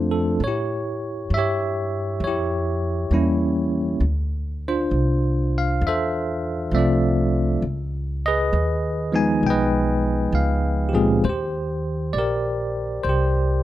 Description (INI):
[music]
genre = jazz ballad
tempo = 66 BPM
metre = 4/4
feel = swing 66% on 8ths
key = unclear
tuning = A4 = 440 Hz
[part]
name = bell-like tine electric piano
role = accompaniment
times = 0.0-13.6 s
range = Bb2 to G#5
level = -21 LUFS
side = equal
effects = medium stereo tremolo
[part]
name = upright bass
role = bass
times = 0.0-13.6 s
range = Bb1 to A2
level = -24 LUFS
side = equal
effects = none
[sound]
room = light reverb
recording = close, detailed microphones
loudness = -20 LUFS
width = side -14 dB against mid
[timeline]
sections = 0.0-13.6 A section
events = none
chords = 0.4 A7b9; 4.0 Dm9; 7.6 C#9; 11.2 Eb6